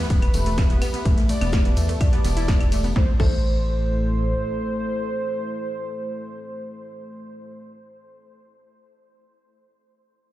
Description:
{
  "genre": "melodic techno",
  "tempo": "126 BPM",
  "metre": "4/4",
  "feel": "straight",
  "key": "A minor",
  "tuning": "A4 = 440 Hz",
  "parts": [
    { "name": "analog synth brass", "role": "melody", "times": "0.0-7.5 s", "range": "B4 to D5", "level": "-31 LUFS", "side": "right 1 dB", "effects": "chorus, sidechain pumping, dub echo" },
    { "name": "dark analog pad", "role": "sustained chords", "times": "0.0-7.5 s", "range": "A3 to B5", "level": "-32 LUFS", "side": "left 1 dB", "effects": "chorus, sidechain pumping" },
    { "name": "wide unison pluck", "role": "arpeggios", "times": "0.0-3.3 s", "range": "A3 to E4", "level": "-30 LUFS", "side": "left 1 dB", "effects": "sidechain pumping, ping-pong delay" },
    { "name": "round analog bass", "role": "bass", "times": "0.0-4.3 s", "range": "D1 to E2", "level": "-23 LUFS", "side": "equal", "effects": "sidechain pumping" },
    { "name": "shaker and snare drum", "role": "drums", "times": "0.0-2.8 s", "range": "none", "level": "-40 LUFS", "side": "right 1 dB", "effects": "none" },
    { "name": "electronic kick drum", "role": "drums", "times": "0.1-3.3 s", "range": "none", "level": "-20 LUFS", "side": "equal", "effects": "small room ambience" },
    { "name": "punchy analog drum machine", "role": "drums", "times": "0.1-3.3 s", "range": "claves, crash cymbal, hi-hat, ride cymbal, snare drum", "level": "-33 LUFS", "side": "equal", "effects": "sidechain pumping on hats, small room ambience, sidechain pumping on perc, sidechain pumping on cymbals" },
    { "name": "tambourine", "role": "percussion", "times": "0.1-2.9 s", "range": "none", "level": "-40 LUFS", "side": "left 4 dB", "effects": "none" },
    { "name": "filtered dub chord stab", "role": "stabs", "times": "3.0-7.9 s", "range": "A3 to A4", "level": "-36 LUFS", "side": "right 2 dB", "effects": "phaser, sidechain pumping, ping-pong delay" }
  ],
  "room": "studio reverb",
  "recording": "played on a big sound system in a bare room, stone room reverb",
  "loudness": "-19 LUFS",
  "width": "side -15 dB against mid",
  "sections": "0.0-3.0 A section; 3.0-6.8 B section",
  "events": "drop 0.0-3.0",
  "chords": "0.0 Em; 3.0 Am",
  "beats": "0.10 0.58 | 1.05 1.53 2.01 2.48 | 2.96 3.44 3.91 4.39 | 4.86 5.34 5.82 6.29"
}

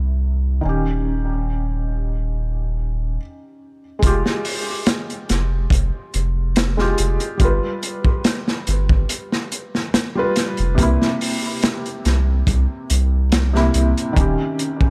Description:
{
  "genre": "trip hop",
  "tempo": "71 BPM",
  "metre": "4/4",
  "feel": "swing 53% on 16ths",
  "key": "F minor",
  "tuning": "A4 = 440 Hz",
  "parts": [
    { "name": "felt-muted upright piano", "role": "accompaniment", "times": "0.0-14.9 s", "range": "C3 to B4", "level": "-26 LUFS", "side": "equal", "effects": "tremolo, tape echo" },
    { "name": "soft dub sub bass", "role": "bass", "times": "0.0-14.4 s", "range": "Eb1 to C2", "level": "-21 LUFS", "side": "equal", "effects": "none" },
    { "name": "crunchy breakbeat drum kit", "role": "drums", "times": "4.0-14.9 s", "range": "hi-hat, kick drum, snare drum", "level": "-22 LUFS", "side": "equal", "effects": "none" }
  ],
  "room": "small room ambience",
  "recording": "echo-heavy mix",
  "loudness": "-20 LUFS",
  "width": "mono",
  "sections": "0.0-4.0 A section; 4.0-14.9 B section",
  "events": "stop 3.2-4.0",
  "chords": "0.0 C7; 0.6 Eb7; 4.0 Fmadd9; 7.4 G7; 10.8 C7; 14.2 Eb7",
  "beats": "| 0.64 1.49 2.33 3.18 | 4.02 4.87 5.71 6.56 | 7.40 8.25 9.09 9.94 | 10.78 11.63 12.47 13.32 | 14.16"
}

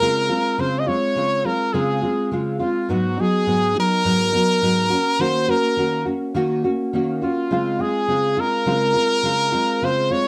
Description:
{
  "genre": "indie pop",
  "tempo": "104 BPM",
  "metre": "4/4",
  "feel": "straight",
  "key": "Db major",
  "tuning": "A4 = 440 Hz",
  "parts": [
    { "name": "clear trumpet", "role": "melody", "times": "0.0-10.3 s", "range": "F4 to Eb5", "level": "-22 LUFS", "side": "equal", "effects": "analog chorus, slapback echo" },
    { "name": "nylon-string guitar", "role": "accompaniment", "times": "0.0-10.3 s", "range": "Ab2 to Gb4", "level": "-24 LUFS", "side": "equal", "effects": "analog chorus, warbly pitch drift" }
  ],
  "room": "light reverb",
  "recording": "dry, close 1970s-style studio recording",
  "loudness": "-20 LUFS",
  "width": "mono",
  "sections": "0.0-10.3 A section",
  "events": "none",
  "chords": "0.0 Dbmaj7; 2.9 Abm7; 4.9 Ebm7; 7.5 Dbmaj7",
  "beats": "0.01 | 0.58 1.16 1.74 2.31 | 2.89 3.47 4.04 4.62 | 5.20 5.78 6.35 6.93 | 7.51 8.08 8.66 9.23 | 9.81"
}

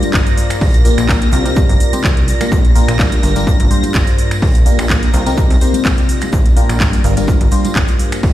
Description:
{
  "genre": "piano house",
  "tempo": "126 BPM",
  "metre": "4/4",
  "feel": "swing 54% on 16ths",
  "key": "Bb major",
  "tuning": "A4 = 440 Hz",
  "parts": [
    { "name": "analog string pad", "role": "sustained chords", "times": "0.0-8.3 s", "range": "Bb6", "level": "-26 LUFS", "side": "right 2 dB", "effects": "ensemble chorus, phaser, sidechain pumping" },
    { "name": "barking FM electric piano", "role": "riff", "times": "0.0-8.2 s", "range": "G2 to C5", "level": "-18 LUFS", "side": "left 2 dB", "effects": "phaser, sidechain pumping, digital delay" },
    { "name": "house drum kit", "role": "drums", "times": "0.0-8.2 s", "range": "finger snaps, handclaps, hi-hat", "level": "-22 LUFS", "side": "right 1 dB", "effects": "none" },
    { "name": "congas and tambourine", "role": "percussion", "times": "0.0-8.3 s", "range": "none", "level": "-28 LUFS", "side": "right 1 dB", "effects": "none" },
    { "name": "airy breathy pad", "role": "texture", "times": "0.0-8.3 s", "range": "F4 to D5", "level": "-26 LUFS", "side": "right 1 dB", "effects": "chorus, sidechain pumping" },
    { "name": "plucky analog bass", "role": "bass", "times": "0.1-8.3 s", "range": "F1 to C2", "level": "-17 LUFS", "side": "equal", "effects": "sidechain pumping" },
    { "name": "electronic kick drum", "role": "drums", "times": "0.1-8.3 s", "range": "none", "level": "-13 LUFS", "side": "equal", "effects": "overdrive" },
    { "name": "open jazz drum kit", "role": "drums", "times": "0.1-8.3 s", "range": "hi-hat, shaker, snare drum", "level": "-32 LUFS", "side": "equal", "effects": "sidechain pumping on hats, high-pass filter on hats, high-pass filter on snare, sidechain pumping on perc, high-pass filter on perc, high-pass filter on room" }
  ],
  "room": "small room reverb",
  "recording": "played on a big sound system in a bare room, stone room reverb",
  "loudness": "-10 LUFS",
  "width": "side -13 dB against mid",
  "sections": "0.0-8.3 A section",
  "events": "none",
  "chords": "0.0 Gm7; 0.6 Bb6; 1.6 Cm7; 2.5 Bb6; 3.2 Gm7; 4.4 Bb6; 7.0 Gm7",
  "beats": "0.14 | 0.61 1.09 1.56 2.04 | 2.52 2.99 3.47 3.95 | 4.42 4.90 5.38 5.85 | 6.33 6.80 7.28 7.76 | 8.23"
}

